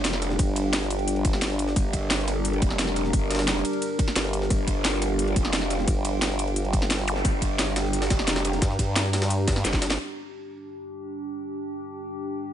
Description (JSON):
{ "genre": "dark technical drum and bass", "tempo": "175 BPM", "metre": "4/4", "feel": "straight", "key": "G minor", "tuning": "A4 = 438 Hz", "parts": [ { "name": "dark analog pad", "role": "sustained chords", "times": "0.0-12.5 s", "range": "G3 to Bb4", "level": "-33 LUFS", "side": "right 1 dB", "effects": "chorus, sidechain pumping" }, { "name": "growl bass", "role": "bass", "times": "0.0-10.0 s", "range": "F1 to G1", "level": "-27 LUFS", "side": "equal", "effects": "distortion, chorus, overdrive, sidechain pumping" }, { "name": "drum and bass drum kit", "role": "drums", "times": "0.0-10.0 s", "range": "hi-hat, ride cymbal, snare drum", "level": "-28 LUFS", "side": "equal", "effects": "none" }, { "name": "jungle sampler-style drum kit", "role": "drums", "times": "0.0-10.0 s", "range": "hi-hat, ride cymbal, snare drum", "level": "-34 LUFS", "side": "equal", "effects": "high-pass filter on cymbals, high-pass filter on snare, high-pass filter on hats" }, { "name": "warbly tape-like pad", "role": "texture", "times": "0.0-12.5 s", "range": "D4 to Bb5", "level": "-31 LUFS", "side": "right 1 dB", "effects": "chorus, built-in reverb, sidechain pumping" }, { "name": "formant-sweep wobble bass", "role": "bass", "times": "0.4-1.7, 4.2-9.6 s", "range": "G1 to G2", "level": "-27 LUFS", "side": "equal", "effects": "chorus" }, { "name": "electronic kick drum", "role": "drums", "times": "0.4-9.8 s", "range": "none", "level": "-24 LUFS", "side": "equal", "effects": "none" }, { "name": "zap", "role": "sound effects", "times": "7.1-7.2 s", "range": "none", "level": "-32 LUFS", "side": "left 1 dB", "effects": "none" } ], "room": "light reverb", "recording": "nothing above 10.8 kHz", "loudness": "-22 LUFS", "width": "side -10 dB against mid", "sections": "0.0-10.0 A section; 10.0-12.5 B section", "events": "drop 0.0-10.0; drum fill 9.6-10.0; band accent 9.9; filter sweep on analog synth pad 10.0-12.5", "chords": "0.0 G5" }